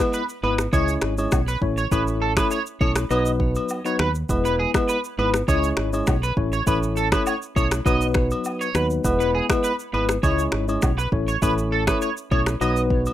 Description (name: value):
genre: afrobeats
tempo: 101 BPM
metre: 4/4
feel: straight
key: E major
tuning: A4 = 440 Hz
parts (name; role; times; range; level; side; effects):
- tine electric piano; accompaniment; 0.0-13.1 s; F#3 to C#5; -24 LUFS; left 2 dB; medium stereo tremolo, plate reverb
- afro-pop drum kit; drums; 0.0-13.1 s; finger snaps, kick drum, rim click, shaker; -24 LUFS; equal; none
- agogo bells and woodblock; percussion; 0.0-13.1 s; none; -32 LUFS; left 1 dB; none
- electric guitar at the edge of break-up; riff; 0.1-12.8 s; G#4 to D#5; -27 LUFS; right 4 dB; analog chorus, tape echo
- fingered electric bass; bass; 0.4-13.1 s; E1 to D#2; -25 LUFS; right 1 dB; none
room: moderate studio reverb, RT60 0.5 s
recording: rough home demo mix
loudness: -19 LUFS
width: side -12 dB against mid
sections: 0.0-13.1 A section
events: none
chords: 0.0 E; 0.7 C#m; 1.6 A; 3.1 B; 4.3 E; 5.5 C#m; 6.4 A; 7.9 B; 9.0 E; 10.2 C#m; 11.1 A; 12.6 B